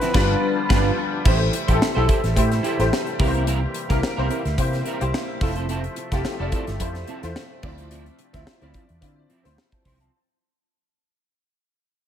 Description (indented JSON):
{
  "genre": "polished 1980s jazz-funk pop",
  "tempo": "108 BPM",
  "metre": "4/4",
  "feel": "swing 54% on 16ths",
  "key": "unclear",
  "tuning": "A4 = 440 Hz",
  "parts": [
    { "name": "warm flugelhorn", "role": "melody", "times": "0.0-0.7 s", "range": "B4", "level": "-28 LUFS", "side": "left 1 dB", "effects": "ping-pong delay" },
    { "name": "clear grand piano", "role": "accompaniment", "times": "0.0-10.3 s", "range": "F3 to C6", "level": "-25 LUFS", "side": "left 2 dB", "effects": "ensemble chorus" },
    { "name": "mellow woodwind section", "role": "sustained chords", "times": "0.0-10.1 s", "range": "C3 to E5", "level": "-34 LUFS", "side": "right 2 dB", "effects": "none" },
    { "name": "electric guitar at the edge of break-up", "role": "riff", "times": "0.0-10.1 s", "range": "F3 to C5", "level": "-30 LUFS", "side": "right 4 dB", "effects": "ensemble chorus" },
    { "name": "modern studio drum kit", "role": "drums", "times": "0.0-10.1 s", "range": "crash cymbal, hi-hat, kick drum, snare drum", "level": "-23 LUFS", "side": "equal", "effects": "gated reverb" },
    { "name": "vintage muted fingered electric bass", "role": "bass", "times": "0.1-10.1 s", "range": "F1 to D3", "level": "-24 LUFS", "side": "equal", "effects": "none" }
  ],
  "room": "studio ambience",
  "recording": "none",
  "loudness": "-19 LUFS",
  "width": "side -9 dB against mid",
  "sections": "0.0-1.3 A section; 1.3-10.1 B section",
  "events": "band accent 0.1-1.3; fade-out 1.3-10.1",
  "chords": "0.1 G7; 1.3 Am7; 3.2 C7; 5.4 Fmaj7; 7.6 Dm9"
}